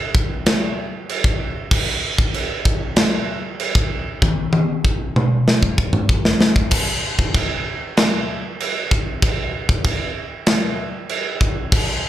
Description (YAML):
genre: metal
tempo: 96 BPM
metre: 4/4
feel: straight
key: none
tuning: none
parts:
  - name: tight metal drum kit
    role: drums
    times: 0.1-11.9 s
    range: china cymbal, crash cymbal, kick drum, snare drum, toms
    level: -17 LUFS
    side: equal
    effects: none
room: moderate club reverb, RT60 0.5 s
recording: live gig heard through the venue's PA, club reverb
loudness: -17 LUFS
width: side -12 dB against mid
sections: 0.0-6.7 A section; 6.7-12.1 B section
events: drum fill 4.2-6.7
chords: none